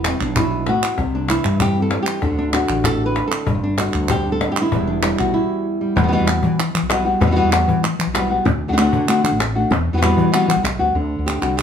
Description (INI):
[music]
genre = flamenco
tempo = 192 BPM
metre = 4/4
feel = straight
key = E minor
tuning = A4 = 441 Hz
[part]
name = flamenco guitar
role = melody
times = 0.0-11.6 s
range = E2 to B4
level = -18 LUFS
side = equal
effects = none
[part]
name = woody fretless electric bass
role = bass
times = 0.0-11.6 s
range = E1 to E3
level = -21 LUFS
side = left 1 dB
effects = none
[part]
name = cajon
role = percussion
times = 0.0-10.8 s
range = none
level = -24 LUFS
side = left 4 dB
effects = none
[part]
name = palmas hand claps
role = percussion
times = 0.1-11.6 s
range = none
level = -25 LUFS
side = right 5 dB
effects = none
[sound]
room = light reverb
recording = small room ambience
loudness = -16 LUFS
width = side -8 dB against mid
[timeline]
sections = 0.0-6.0 A section; 6.0-11.0 B section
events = break 5.3-6.0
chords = 0.0 Emadd9; 1.0 C; 2.2 D; 3.5 G; 4.7 Emadd9; 8.5 D; 9.7 Emadd9; 11.0 Dsus4